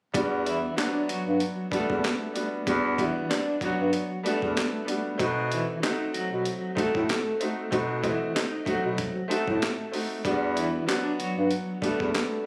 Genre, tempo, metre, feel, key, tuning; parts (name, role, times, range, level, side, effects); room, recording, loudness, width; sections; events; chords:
hip hop, boom-bap hip-hop; 95 BPM; 4/4; swing 55% on 16ths; E minor; A4 = 440 Hz
bright upright piano; accompaniment; 0.1-12.5 s; F#3 to D#5; -32 LUFS; equal; cassette tape, high-pass filter, low-pass filter
mellow bass clarinet; bass; 0.1-12.1 s; E2 to B2; -30 LUFS; equal
boom bap sampler-style drum kit; drums; 0.1-12.3 s; handclaps, hi-hat, kick drum, snare drum; -34 LUFS; equal
electric guitar at the edge of break-up; melody; 0.5-12.5 s; E3 to D#5; -34 LUFS; equal; tremolo, high-pass filter, low-pass filter
light reverb; recorded on a phone in the room, studio reverb, compression; -27 LUFS; mono
0.1-12.5 A section
0.1 Em9; 5.2 B7b9; 10.2 Em9